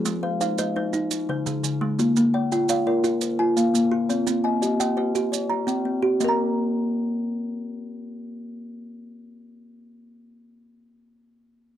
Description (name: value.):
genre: southern african traditional, mbira-style interlocking cycle.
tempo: 114 BPM (dotted quarters).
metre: 12/8.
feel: straight.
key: unclear.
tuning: A4 = 440 Hz.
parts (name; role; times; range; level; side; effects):
kalimba; arpeggios; 0.0-10.7 s; Db3+43c to Bb5; -24 LUFS; left 2 dB; none.
kalimba; arpeggios; 0.0-10.7 s; Db3+43c to Bb5; -25 LUFS; right 3 dB; none.
maracas; percussion; 0.1-6.4 s; none; -32 LUFS; right 10 dB; none.
room: little or no reverb.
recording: dry, close 1970s-style studio recording.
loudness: -21 LUFS.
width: side -11 dB against mid.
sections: 0.0-6.2 A section; 6.2-10.4 B section.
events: none.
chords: 0.0 Ab; 0.9 Db5; 2.0 Bbm; 4.1 Cm; 6.2 N.C..